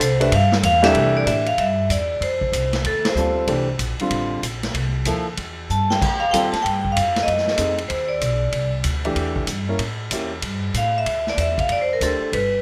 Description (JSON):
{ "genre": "jazz, small-group swing and bop", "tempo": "190 BPM", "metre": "4/4", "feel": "swing 64% on 8ths", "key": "C mixolydian", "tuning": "A4 = 439 Hz", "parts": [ { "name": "vibraphone with medium hard mallets", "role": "melody", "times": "0.0-3.7, 5.7-8.7, 10.8-12.6 s", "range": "A4 to A5", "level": "-23 LUFS", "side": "equal", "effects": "none" }, { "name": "upright bass", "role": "bass", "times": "0.0-12.6 s", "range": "G1 to C3", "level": "-27 LUFS", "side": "equal", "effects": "none" }, { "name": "swinging big-band drum kit", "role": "drums", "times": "0.0-12.4 s", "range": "crash cymbal, hi-hat, kick drum, ride cymbal, snare drum", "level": "-28 LUFS", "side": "equal", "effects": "none" }, { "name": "warm grand piano", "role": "accompaniment", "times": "0.2-12.3 s", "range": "C2 to C5", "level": "-25 LUFS", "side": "equal", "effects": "none" } ], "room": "light reverb", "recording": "none", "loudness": "-21 LUFS", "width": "mono", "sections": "1.0-12.6 A section", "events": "band accent 3.0; drum fill 5.7-6.0", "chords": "0.3 Cadd9; 2.2 F9; 3.5 C9; 6.0 F9; 7.3 F#dim7; 8.5 C9; 9.8 A7b9; 11.1 Dm7", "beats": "0.01 0.33 0.64 | 0.96 1.27 1.59 1.90 | 2.22 2.53 2.85 3.17 | 3.48 3.80 4.11 4.43 | 4.75 5.06 5.38 5.69 | 6.01 6.33 6.64 6.96 | 7.27 7.59 7.91 8.22 | 8.54 8.85 9.17 9.48 | 9.80 10.12 10.43 10.75 | 11.06 11.38 11.69 12.01 | 12.32" }